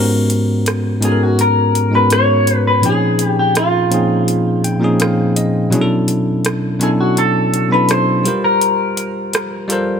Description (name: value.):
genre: contemporary R&B.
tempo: 83 BPM.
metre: 4/4.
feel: straight.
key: unclear.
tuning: A4 = 442 Hz.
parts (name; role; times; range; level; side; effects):
bell-like tine electric piano; accompaniment; 0.0-10.0 s; G#2 to G5; -15 LUFS; equal; none.
booming analog drum machine; drums; 0.3-9.9 s; hi-hat, rim click; -21 LUFS; right 1 dB; none.
clean electric guitar; melody; 1.0-9.5 s; E#4 to C#5; -16 LUFS; left 1 dB; tape echo.
room: light reverb.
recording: none.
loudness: -13 LUFS.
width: side -7 dB against mid.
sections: 0.0-10.0 A section.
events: break 0.0-10.0; tine electric piano fill 4.3-5.7.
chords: 0.0 G#m11; 2.8 A#m11; 5.7 Bm11; 8.3 Gm11.